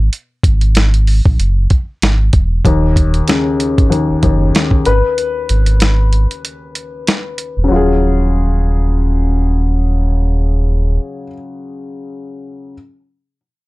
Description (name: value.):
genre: hip hop, boom-bap hip-hop.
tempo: 95 BPM.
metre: 4/4.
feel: swing 57% on 16ths.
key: Eb minor.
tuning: A4 = 439 Hz.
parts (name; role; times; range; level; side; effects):
sub bass with octave; bass; 0.0-11.0 s; Eb1 to Bb1; -13 LUFS; equal; none.
dusty soul sampler-style drum kit; drums; 0.1-7.5 s; hi-hat, kick drum, snare drum; -14 LUFS; equal; none.
dark upright piano; accompaniment; 2.7-12.7 s; Eb2 to Cb5; -17 LUFS; left 3 dB; cassette tape.
room: little or no reverb.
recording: dark, warm production.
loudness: -11 LUFS.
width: side -20 dB against mid.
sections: 0.0-2.6 A section; 2.6-7.7 B section; 7.7-10.2 C section.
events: break 0.0-2.6, 5.2-7.7.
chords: 0.0 N.C.; 2.6 Ebm7; 4.9 Abm; 7.7 Ebm11.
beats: | 0.12 0.75 1.38 2.02 | 2.65 3.28 3.91 4.54 | 5.17 5.80 6.44 7.07 | 7.70 8.33 8.96 9.59.